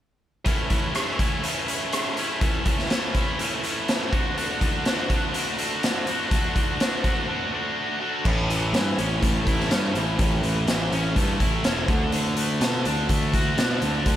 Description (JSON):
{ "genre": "classic rock", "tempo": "124 BPM", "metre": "4/4", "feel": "straight", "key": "A major", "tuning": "A4 = 440 Hz", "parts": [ { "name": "tight distorted guitar", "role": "riff", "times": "0.4-14.2 s", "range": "A2 to F#4", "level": "-25 LUFS", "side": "equal", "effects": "distortion" }, { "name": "raw garage drum kit", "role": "drums", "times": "0.5-14.2 s", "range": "crash cymbal, hi-hat, kick drum, rim click, snare drum", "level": "-24 LUFS", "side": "equal", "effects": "none" }, { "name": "fuzz picked electric bass", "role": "bass", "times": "8.3-14.2 s", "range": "E1 to B2", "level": "-26 LUFS", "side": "equal", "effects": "overdrive" } ], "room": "small room ambience", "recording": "none", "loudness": "-21 LUFS", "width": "side -12 dB against mid", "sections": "0.5-8.3 A section; 8.3-14.2 B section", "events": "break 7.3-8.3", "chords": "0.5 A; 4.1 D; 8.3 A; 11.9 D" }